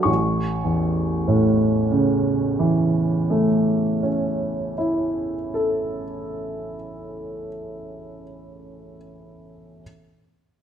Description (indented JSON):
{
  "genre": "classical, romantic nocturne for solo piano",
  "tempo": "32 BPM (dotted quarters)",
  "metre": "12/8",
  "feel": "rubato",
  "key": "A major",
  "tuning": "A4 = 440 Hz",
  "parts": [
    { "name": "clear baby grand piano", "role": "solo", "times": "0.0-9.8 s", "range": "A1 to C#6", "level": "-20 LUFS", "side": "right 1 dB", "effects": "none" }
  ],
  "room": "wet recital hall reverb, RT60 1.5 s",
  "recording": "none",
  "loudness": "-19 LUFS",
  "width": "side -8 dB against mid",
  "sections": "0.1-7.6 A section",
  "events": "none",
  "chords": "0.1 A"
}